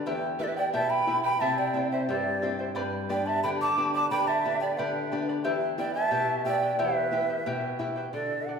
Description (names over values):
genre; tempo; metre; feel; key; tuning
andean folk, Andean ensemble; 89 BPM; 2/4; straight; E minor; A4 = 440 Hz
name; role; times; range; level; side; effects
charango; accompaniment; 0.0-8.6 s; E4 to B5; -32 LUFS; left 1 dB; none
nylon-string guitar; accompaniment; 0.0-8.6 s; E2 to G4; -33 LUFS; left 3 dB; none
breathy large quena; melody; 0.4-8.6 s; D5 to D6; -29 LUFS; right 1 dB; none
polished pan flute; second line; 0.4-8.6 s; G4 to A5; -32 LUFS; right 4 dB; none
room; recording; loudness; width
wet recital hall reverb, RT60 1.6 s; recorded in a church or concert hall; -25 LUFS; side -6 dB against mid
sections
0.0-8.1 A section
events
none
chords
0.0 Em; 1.4 C; 2.7 G; 5.4 Em